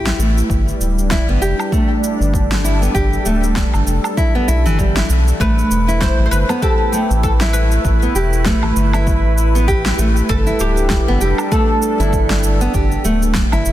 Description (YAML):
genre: organic downtempo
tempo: 98 BPM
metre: 4/4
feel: swing 58% on 16ths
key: unclear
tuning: A4 = 440 Hz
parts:
  - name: warm analog pad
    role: sustained chords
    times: 0.0-13.7 s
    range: G3 to B4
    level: -23 LUFS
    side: equal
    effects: lush chorus, sidechain pumping
  - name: nylon-string guitar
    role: arpeggios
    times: 0.0-13.7 s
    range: E3 to G4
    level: -20 LUFS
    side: equal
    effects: ping-pong delay
  - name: round analog bass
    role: bass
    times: 0.0-13.7 s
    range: D1 to B1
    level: -16 LUFS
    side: equal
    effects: sidechain pumping
  - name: electronic snare drum, cabasa and woodblock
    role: drums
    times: 0.1-13.7 s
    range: none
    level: -24 LUFS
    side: right 1 dB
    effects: none
  - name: electronic kick drum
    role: drums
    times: 0.5-13.5 s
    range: none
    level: -19 LUFS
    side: equal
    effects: none
  - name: oud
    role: melody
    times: 5.4-13.7 s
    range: G4 to C5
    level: -22 LUFS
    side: equal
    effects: ping-pong delay
  - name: quartz singing bowl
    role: texture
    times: 5.4-13.7 s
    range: B5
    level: -32 LUFS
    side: equal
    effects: none
room: light reverb, small room ambience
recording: dense, heavily limited modern master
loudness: -13 LUFS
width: side -13 dB against mid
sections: 0.0-13.7 A section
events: none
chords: 0.5 Gadd9; 5.4 Asus2; 10.3 Gadd9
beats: | 0.50 1.11 1.72 2.33 | 2.94 3.56 4.17 4.78 | 5.39 6.01 6.62 7.23 | 7.84 8.46 9.07 9.68 | 10.29 10.90 11.52 12.13 | 12.74 13.35